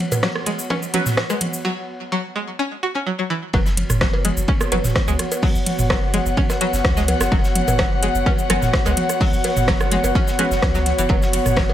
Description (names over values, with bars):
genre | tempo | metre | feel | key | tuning
minimal techno | 127 BPM | 4/4 | straight | unclear | A4 = 440 Hz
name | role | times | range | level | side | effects
crunchy breakbeat drum kit | drums | 0.0-11.7 s | hi-hat, ride cymbal, snare drum | -34 LUFS | left 1 dB | high-pass filter on cymbals, high-pass filter on hats, high-pass filter on snare, high-pass filter on room
organic electronic drum kit | percussion | 0.0-11.7 s | cowbell, rim click, toms | -24 LUFS | right 2 dB | overdrive
airy breathy pad | texture | 0.0-11.7 s | B3 to F#5 | -24 LUFS | left 1 dB | chorus, sidechain pumping
house drum kit | drums | 0.1-11.7 s | hi-hat, ride cymbal, rim click, shaker | -24 LUFS | equal | overdrive
string-like resonator pluck | riff | 0.2-11.6 s | E3 to F#4 | -25 LUFS | left 1 dB | chorus, sidechain pumping, digital delay
electronic kick drum | drums | 0.2-11.7 s | none | -20 LUFS | equal | overdrive, high-pass filter on kick, high-pass filter on room
filtered dub chord stab | stabs | 0.9-1.1, 4.7-10.5 s | C#4 to B4 | -27 LUFS | right 2 dB | phaser, analog chorus, tape echo
punchy sub bass | bass | 3.5-11.7 s | E1 to C#2 | -23 LUFS | equal | sidechain pumping
room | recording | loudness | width
light reverb | none | -17 LUFS | side -12 dB against mid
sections
0.0-3.5 A section; 3.5-11.7 B section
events
build-up 0.0-3.5; break 1.6-3.5; drop 3.5-11.7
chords
0.0 F#sus4